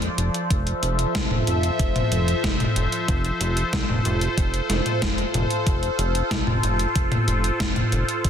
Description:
synthwave; 93 BPM; 4/4; straight; F major; A4 = 436 Hz
phased analog pad; sustained chords; 0.0-8.3 s; F3 to E5; -25 LUFS; left 1 dB; phaser, chorus, sidechain pumping
chorused synth bass; bass; 0.0-8.3 s; F1 to C2; -25 LUFS; equal; sidechain pumping
gated 80s digital drum machine; drums; 0.0-8.3 s; hi-hat, snare drum, toms; -25 LUFS; left 1 dB; gated reverb, gated reverb snare, overdrive
electronic kick drum; drums; 0.5-8.3 s; -25 LUFS; equal; overdrive
light reverb, digital ambience; dense, heavily limited modern master; -20 LUFS; side -8 dB against mid
0.0-8.3 A section
0.0 F6; 0.5 Fmaj7; 5.7 F
| 0.50 1.15 1.79 2.44 | 3.08 3.73 4.38 5.02 | 5.67 6.31 6.96 7.60 | 8.25

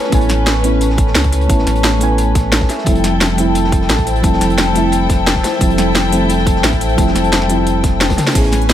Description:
liquid drum and bass; 175 BPM; 4/4; swing 53% on 16ths; A4 = 440 Hz
mellow FM electric piano; accompaniment; 0.0-8.7 s; F3 to G#5; -18 LUFS; right 1 dB; chorus, ping-pong delay
dark studio string section; sustained chords; 0.0-8.7 s; C#4 to G#5; -20 LUFS; left 4 dB; sidechain pumping
vibraphone with soft mallets; arpeggios; 0.0-8.4 s; A3 to A5; -21 LUFS; left 1 dB; dub echo
crunchy breakbeat drum kit; drums; 0.0-8.7 s; hi-hat, snare drum; -27 LUFS; equal; high-pass filter on hats, high-pass filter on snare, high-pass filter on room
sub bass with octave; bass; 0.1-8.7 s; F1 to C#2; -17 LUFS; equal
drum and bass drum kit; drums; 0.1-8.7 s; hi-hat, ride cymbal, snare drum, toms; -17 LUFS; equal
electronic kick drum; drums; 0.1-8.4 s; -16 LUFS; equal
light reverb, small room ambience; -11 LUFS; side -11 dB against mid
0.0-8.4 A section
drop 0.0-8.4; drum fill 8.1; band accent 8.3
0.0 Amaj9; 2.9 Fmaj9
| 0.12 0.47 0.81 1.15 | 1.50 1.84 2.18 2.52 | 2.87 3.21 3.55 3.90 | 4.24 4.58 4.92 5.27 | 5.61 5.95 6.30 6.64 | 6.98 7.33 7.67 8.01 | 8.35 8.70

